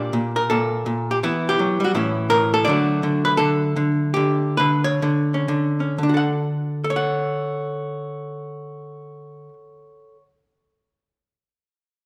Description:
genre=solo jazz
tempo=113-169 BPM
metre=4/4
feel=swing 65% on 8ths, rubato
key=D major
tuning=A4 = 440 Hz
part: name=archtop guitar, miked and amplified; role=solo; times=0.0-10.3 s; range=A2 to F#5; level=-22 LUFS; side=equal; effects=none
room=moderate recital hall reverb, RT60 1.6 s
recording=recorded in a church or concert hall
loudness=-21 LUFS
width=mono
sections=0.0-6.0 A section; 6.0-10.1 B section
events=slowing down 2.7-6.0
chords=0.0 Bb6; 1.2 Emadd9; 1.9 A; 2.7 Dmaj7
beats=0.14 0.50 0.86 | 1.23 1.59 1.94 2.30 | 2.66 3.02 3.39 3.77 | 4.16 4.57 5.01 5.49 | 6.00 6.52 7.03 7.54 | 8.05 8.56 9.08 9.61

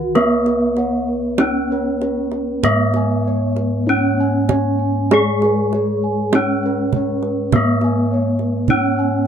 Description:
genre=Javanese gamelan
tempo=48-53 BPM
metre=4/4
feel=straight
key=unclear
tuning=A4 = 438 Hz
part: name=gamelan-type bronze metallophone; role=melody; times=0.0-9.3 s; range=B3-40c to G#4+20c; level=-19 LUFS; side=right 1 dB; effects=none
part: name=gamelan-type bronze metallophone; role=accompaniment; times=0.0-9.3 s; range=D#3+40c to B3-40c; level=-23 LUFS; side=left 2 dB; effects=none
part: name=gamelan-type bronze metallophone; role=arpeggios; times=0.0-9.2 s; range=B4-40c to G#5+20c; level=-27 LUFS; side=right 6 dB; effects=none
part: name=gamelan-type bossed gongs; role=bass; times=0.0-9.3 s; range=C#2 to B4-40c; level=-22 LUFS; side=equal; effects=none
part: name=gamelan-type bossed gongs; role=arpeggios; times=0.2-9.3 s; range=B4-40c to G#5+20c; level=-27 LUFS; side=left 5 dB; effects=none
part: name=kendang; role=percussion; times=0.2-8.9 s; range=none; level=-19 LUFS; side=right 6 dB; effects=none
room=little or no reverb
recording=dark, warm production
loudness=-15 LUFS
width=side -8 dB against mid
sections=0.0-9.3 A section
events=none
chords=none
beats=| 0.15 1.40 2.64 3.88 | 5.12 6.34 7.53 8.69

